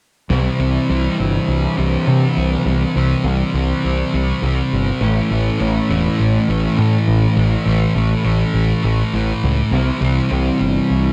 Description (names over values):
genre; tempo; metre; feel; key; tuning
rock; 102 BPM; 4/4; straight; unclear; A4 = 439 Hz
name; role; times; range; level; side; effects
overdriven semi-hollow guitar; riff; 0.3-11.1 s; A2 to E4; -22 LUFS; equal; reverse reverb, cassette tape
thick fuzz guitar; riff; 0.3-11.1 s; A2 to C4; -22 LUFS; equal; distortion, lush chorus, cassette tape
growling fingered electric bass; bass; 0.3-11.1 s; E1 to C3; -20 LUFS; equal; overdrive
room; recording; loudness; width
moderate booth ambience, RT60 0.2 s; home recording on cassette; -17 LUFS; mono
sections
0.3-11.1 A section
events
none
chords
0.3 C; 5.0 A; 9.7 C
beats
| 0.30 0.89 1.48 2.07 | 2.66 3.25 3.84 4.43 | 5.02 5.61 6.20 6.79 | 7.37 7.96 8.55 9.14 | 9.73 10.32 10.90